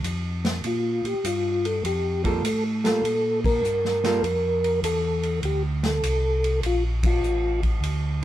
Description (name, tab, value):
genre	soul jazz organ trio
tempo	100 BPM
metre	4/4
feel	swing 67% on 8ths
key	unclear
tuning	A4 = 440 Hz
part	mellow tonewheel organ	bass	0.0-8.2 s	A1 to Bb2	-26 LUFS	equal	chorus vibrato, slow rotary speaker
part	warm soul drum kit	drums	0.0-8.0 s	hi-hat, kick drum, ride cymbal, snare drum	-29 LUFS	equal	none
part	percussive tonewheel organ	melody	0.7-7.6 s	F4 to Bb4	-24 LUFS	equal	slow rotary speaker, chorus vibrato
part	archtop guitar, miked and amplified	accompaniment	2.2-4.2 s	G3 to A4	-27 LUFS	right 4 dB	none
room	moderate studio reverb, RT60 0.7 s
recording	band playing live in one room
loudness	-22 LUFS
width	side -13 dB against mid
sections	0.0-8.2 A section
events	band accent 3.3, 6.9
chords	0.0 N.C.; 0.6 Gm9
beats	0.04 | 0.64 1.24 1.84 2.44 | 3.04 3.64 4.24 4.83 | 5.43 6.03 6.63 7.23 | 7.83